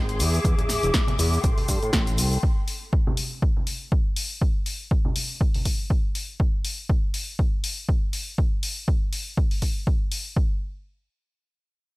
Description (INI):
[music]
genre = filtered disco house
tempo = 121 BPM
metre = 4/4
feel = swing 56% on 16ths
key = unclear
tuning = A4 = 437 Hz
[part]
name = warm studio string section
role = sustained chords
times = 0.0-2.4 s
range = Ab4 to D6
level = -29 LUFS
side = left 1 dB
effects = sidechain pumping, low-pass filter
[part]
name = fat analog bass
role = bass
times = 0.0-2.4 s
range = E1 to A2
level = -24 LUFS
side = equal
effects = sidechain pumping, low-pass filter
[part]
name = punchy analog drum machine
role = drums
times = 0.1-10.2 s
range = cabasa, hi-hat, snare drum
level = -29 LUFS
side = left 1 dB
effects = sidechain pumping on hats, sidechain pumping on perc
[part]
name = tambourine and congas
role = percussion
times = 0.2-6.4 s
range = none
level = -33 LUFS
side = right 1 dB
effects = sidechain pumping on perc, low-pass filter on perc
[part]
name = electronic kick drum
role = drums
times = 0.4-10.5 s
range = none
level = -23 LUFS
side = equal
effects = none
[sound]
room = studio reverb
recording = none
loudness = -22 LUFS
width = side -22 dB against mid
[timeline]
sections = 0.0-10.4 A section; 10.4-12.0 B section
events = filter sweep on analog synth bass 0.0-2.4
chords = 0.2 E7; 1.4 Am7; 2.4 N.C.